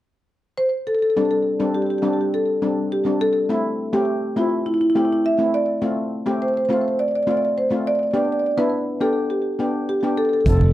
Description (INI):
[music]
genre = calypso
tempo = 103 BPM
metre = 4/4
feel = straight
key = C major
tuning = A4 = 440 Hz
[part]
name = marimba with soft mallets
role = melody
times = 0.6-10.7 s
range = E4 to E5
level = -20 LUFS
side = equal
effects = slapback echo
[part]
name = steel pan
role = accompaniment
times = 1.2-10.7 s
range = G3 to A4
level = -22 LUFS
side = left 1 dB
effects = none
[part]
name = modern bright fingered electric bass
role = bass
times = 10.5-10.7 s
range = F1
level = -15 LUFS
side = equal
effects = none
[part]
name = street-band drum kit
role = drums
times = 10.5-10.6 s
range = hi-hat, kick drum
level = -20 LUFS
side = right 1 dB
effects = none
[part]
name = congas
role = percussion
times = 10.6-10.7 s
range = none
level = -21 LUFS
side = right 4 dB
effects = none
[sound]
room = light reverb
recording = dry, close 1970s-style studio recording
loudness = -18 LUFS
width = side -14 dB against mid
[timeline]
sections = 0.0-1.2 A section; 1.2-10.7 B section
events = none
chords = 0.0 N.C.; 1.2 Csus2; 3.5 Am; 5.8 F; 8.1 G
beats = 0.00 0.58 | 1.16 1.75 2.33 2.91 | 3.49 4.07 4.65 5.23 | 5.81 6.39 6.97 7.55 | 8.14 8.72 9.30 9.88 | 10.46